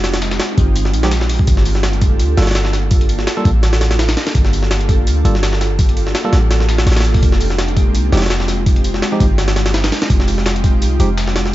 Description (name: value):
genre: drum and bass, jungle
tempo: 167 BPM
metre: 4/4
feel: swing 54% on 16ths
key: unclear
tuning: A4 = 440 Hz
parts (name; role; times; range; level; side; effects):
- warm 808-style bass; bass; 0.0-11.5 s; D1 to D2; -16 LUFS; equal; tube saturation
- dusty soul sampler-style drum kit; drums; 0.0-11.4 s; hi-hat, snare drum, tambourine; -28 LUFS; left 3 dB; high-pass filter on snare, high-pass filter on perc, high-pass filter on hats, high-pass filter on room
- jungle sampler-style drum kit; drums; 0.0-11.5 s; hi-hat, kick drum, snare drum; -16 LUFS; equal; none
- barky tine electric piano; stabs; 1.0-11.1 s; F3 to A4; -24 LUFS; right 2 dB; dub echo
room: little or no reverb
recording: vinyl crackle, nothing above 7.6 kHz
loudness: -12 LUFS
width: side -15 dB against mid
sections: 0.0-11.5 A section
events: none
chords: 0.0 Fm9; 1.5 Gm9; 7.2 Fm9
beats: | 0.04 0.40 0.76 1.12 | 1.48 1.84 2.19 2.56 | 2.91 3.27 3.63 3.99 | 4.35 4.71 5.07 5.43 | 5.79 6.15 6.51 6.87 | 7.22 7.58 7.94 8.30 | 8.66 9.02 9.38 9.74 | 10.10 10.46 10.82 11.18 | 11.54